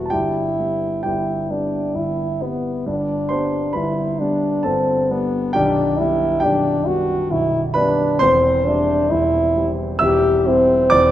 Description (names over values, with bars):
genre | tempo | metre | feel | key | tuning
classical, romantic duo for French horn and grand piano | 66 BPM | 3/4 | rubato | unclear | A4 = 439 Hz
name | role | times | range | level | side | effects
clear French horn | melody | 0.0-11.1 s | B3 to G4 | -18 LUFS | left 1 dB | none
dark concert grand piano | accompaniment | 0.0-11.1 s | B0 to E6 | -20 LUFS | right 1 dB | none
room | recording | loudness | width
moderate scoring stage reverb, RT60 1.7 s | none | -16 LUFS | side -12 dB against mid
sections
0.0-11.1 A section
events
none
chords
0.1 Em/G; 2.9 G; 5.5 G/B; 8.2 C/E